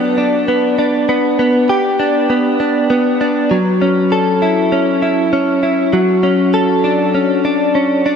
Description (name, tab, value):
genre	dream pop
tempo	99 BPM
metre	4/4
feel	straight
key	unclear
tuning	A4 = 440 Hz
part	direct-recorded clean electric guitar	solo	0.0-8.2 s	F#3 to A4	-12 LUFS	equal	analog chorus, digital delay
room	wet shimmer reverb, RT60 6.0 s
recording	none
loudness	-12 LUFS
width	side -6 dB against mid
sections	0.0-8.2 A section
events	none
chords	0.0 Gmaj9 (rootless); 1.1 G/B; 3.5 F#m7; 5.9 Dmaj7/F#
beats	0.48 | 1.09 1.69 2.30 2.90 | 3.51 4.12 4.72 5.33 | 5.93 6.54 7.15 7.75